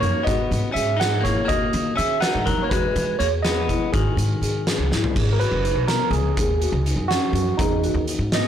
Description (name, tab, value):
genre	progressive instrumental, band music in an uneven meter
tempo	246 BPM (eighths)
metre	5/8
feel	straight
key	G# minor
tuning	A4 = 440 Hz
part	overdriven tine electric piano	melody	0.0-8.5 s	D#4 to F#5	-24 LUFS	right 3 dB	phaser
part	electric guitar at the edge of break-up	second line	0.0-4.9 s	D#3 to D#4	-27 LUFS	left 5 dB	none
part	marimba with soft mallets	arpeggios	0.0-8.5 s	B3 to G#4	-28 LUFS	left 3 dB	none
part	upright bass	bass	0.0-8.4 s	F#1 to E3	-24 LUFS	equal	none
part	oversized low-tuned drum kit	drums	0.0-8.4 s	crash cymbal, hi-hat, kick drum, snare drum, toms	-25 LUFS	equal	none
room	light reverb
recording	blown-out, overdriven recording, overdrive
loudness	-19 LUFS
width	side -9 dB against mid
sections	0.0-5.2 A section; 5.2-8.5 B section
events	drum fill 4.9; tine electric piano solo 5.2-8.5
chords	0.3 G#m7; 1.5 D#m; 2.7 Emaj7; 3.9 G#5; 5.2 G#m7; 6.4 D#m7; 7.6 Emaj7